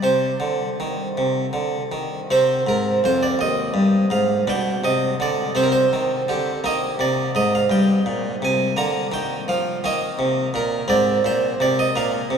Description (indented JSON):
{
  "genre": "classical, baroque-style suite movement for harpsichord",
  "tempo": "56 BPM (dotted quarters)",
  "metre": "6/8",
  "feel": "rubato",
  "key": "C minor",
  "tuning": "A4 = 440 Hz",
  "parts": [
    { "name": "harpsichord", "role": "solo", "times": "0.0-12.4 s", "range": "Eb2 to Bb5", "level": "-18 LUFS", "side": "right 1 dB", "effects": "none" }
  ],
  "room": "wet cathedral reverb, RT60 6.2 s",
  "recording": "studio ambience",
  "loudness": "-18 LUFS",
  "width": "side -7 dB against mid",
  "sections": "0.0-2.3 A section; 2.3-12.4 B section",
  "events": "none",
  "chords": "0.0 Cm; 4.5 Gadd11/B; 5.6 Cm; 6.6 Eb; 8.8 Bb/D; 9.8 Eb5; 10.9 Ab"
}